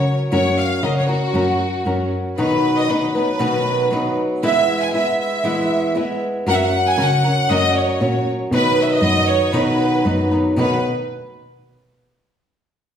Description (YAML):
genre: mexican folk, mariachi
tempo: 117 BPM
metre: 2/4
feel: straight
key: B major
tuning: A4 = 441 Hz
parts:
  - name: clear studio violin section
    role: melody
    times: 0.0-10.8 s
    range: F#4 to G#5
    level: -20 LUFS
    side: right 1 dB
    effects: none
  - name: flamenco guitar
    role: accompaniment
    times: 0.0-10.8 s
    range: B2 to B4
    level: -19 LUFS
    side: left 1 dB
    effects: none
  - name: muted cello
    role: bass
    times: 0.0-2.2, 6.5-10.8 s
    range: F#2 to C#3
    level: -22 LUFS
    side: equal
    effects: none
room: wet recital hall reverb, RT60 1.3 s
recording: heard from further back in the room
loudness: -16 LUFS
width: side -8 dB against mid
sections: 0.0-2.4 A section; 2.4-10.6 B section; 10.6-11.6 C section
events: none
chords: 0.0 F#; 2.4 B; 4.4 E; 6.5 F#; 8.5 B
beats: | 0.32 0.83 | 1.35 1.86 | 2.39 2.90 | 3.42 3.93 | 4.44 4.95 | 5.45 5.96 | 6.48 7.00 | 7.51 8.02 | 8.53 9.03 | 9.54 10.06 | 10.58